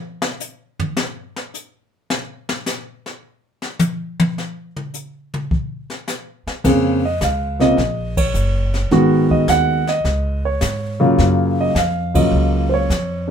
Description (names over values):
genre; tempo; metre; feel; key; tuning
jazz piano trio; 106 BPM; 4/4; swing 69% on 8ths; Bb minor; A4 = 440 Hz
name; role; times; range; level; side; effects
jazz brush drum kit; drums; 0.2-13.3 s; brushed snare drum, crash cymbal, hi-hat, kick drum, ride cymbal, snare drum, toms; -22 LUFS; left 2 dB; none
upright bass; bass; 6.5-13.3 s; Gb1 to Ab2; -21 LUFS; equal; none
warm grand piano; melody; 6.6-13.3 s; Db3 to Gb5; -16 LUFS; right 1 dB; none
room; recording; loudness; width
moderate studio reverb, RT60 0.6 s; minimal, uncompressed stereo recording; -16 LUFS; side -8 dB against mid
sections
0.0-6.6 A section; 6.6-13.3 B section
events
drum solo 0.0-6.6; band accent 8.1, 12.0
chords
0.0 N.C.; 6.6 Bbmadd9; 8.9 Abm7; 10.1 Db5; 11.2 Gbmaj7